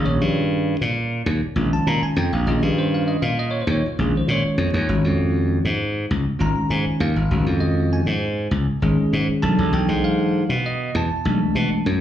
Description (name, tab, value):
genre	electric jazz fusion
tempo	99 BPM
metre	4/4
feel	straight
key	unclear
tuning	A4 = 440 Hz
part	bell-like tine electric piano	accompaniment	0.0-11.9 s	Eb3 to Bb5	-22 LUFS	equal	fast stereo tremolo, slapback echo
part	slap bass	bass	0.0-12.0 s	Ab1 to B2	-20 LUFS	equal	none
room	light reverb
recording	live gig heard through the venue's PA, club reverb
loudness	-18 LUFS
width	side -11 dB against mid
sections	0.0-12.0 A section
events	none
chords	0.0 Bbm7; 4.9 Ab7sus4; 9.4 Bm7